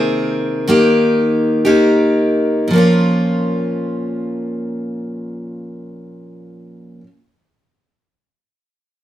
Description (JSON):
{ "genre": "folk", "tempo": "54-66 BPM (dotted quarters)", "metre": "6/8", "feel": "straight", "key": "Bb dorian", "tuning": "A4 = 440 Hz", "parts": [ { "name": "picked steel-string acoustic guitar", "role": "accompaniment", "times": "0.0-7.1 s", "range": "Bb2 to Ab4", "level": "-14 LUFS", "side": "equal", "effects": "none" } ], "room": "wet studio reverb, RT60 0.6 s", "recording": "heard from further back in the room", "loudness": "-13 LUFS", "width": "side -12 dB against mid", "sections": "0.0-2.7 A section; 2.7-7.1 B section", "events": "slowing down 0.0-2.7", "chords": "0.0 Abadd9/C; 0.7 Eb; 2.7 Bbm" }